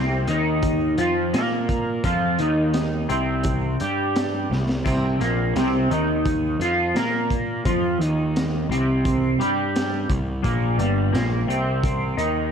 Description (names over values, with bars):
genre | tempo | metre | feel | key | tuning
psychedelic rock | 86 BPM | 4/4 | straight | C minor | A4 = 440 Hz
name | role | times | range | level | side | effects
twangy electric guitar | riff | 0.0-12.5 s | G2 to Bb4 | -21 LUFS | equal | rotary speaker, double-tracked left and right
fuzz picked electric bass | bass | 0.0-12.5 s | G1 to Bb2 | -27 LUFS | equal | overdrive
crunchy breakbeat drum kit | drums | 0.3-12.3 s | hi-hat, kick drum, snare drum, splash cymbal | -27 LUFS | equal | none
room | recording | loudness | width
moderate lush hall reverb, RT60 1.6 s, studio reverb | dreamy mix soaked in reverb | -20 LUFS | side -7 dB against mid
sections
0.0-12.5 A section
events
drum fill 4.5-4.8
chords
0.0 Cm; 10.4 Bb5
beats
0.63 1.33 | 2.03 2.74 3.44 4.14 | 4.84 5.55 6.25 6.95 | 7.65 8.35 9.05 9.74 | 10.44 11.14 11.84